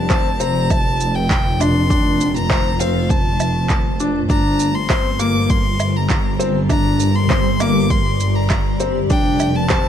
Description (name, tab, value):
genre	piano and strings electronica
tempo	100 BPM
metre	4/4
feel	straight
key	G minor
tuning	A4 = 438 Hz
part	clear violin	melody	0.0-9.9 s	F5 to D6	-23 LUFS	left 2 dB	tape echo
part	granular cloud pad	sustained chords	0.0-9.9 s	G3 to D5	-24 LUFS	equal	built-in reverb, sidechain pumping
part	warm symphonic double bass section	bass	0.0-9.9 s	F1 to G1	-20 LUFS	right 1 dB	sidechain pumping
part	clear upright piano	riff	0.1-9.9 s	Bb3 to D4	-22 LUFS	left 2 dB	none
part	electronic handclaps, shaker and woodblock	drums	0.1-9.8 s	none	-25 LUFS	right 2 dB	overdrive
part	electronic kick drum	drums	0.1-9.8 s	none	-19 LUFS	equal	overdrive
room	small room ambience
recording	dark, warm production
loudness	-15 LUFS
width	side -9 dB against mid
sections	0.0-9.9 A section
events	none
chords	0.0 F; 4.3 Gm; 9.1 F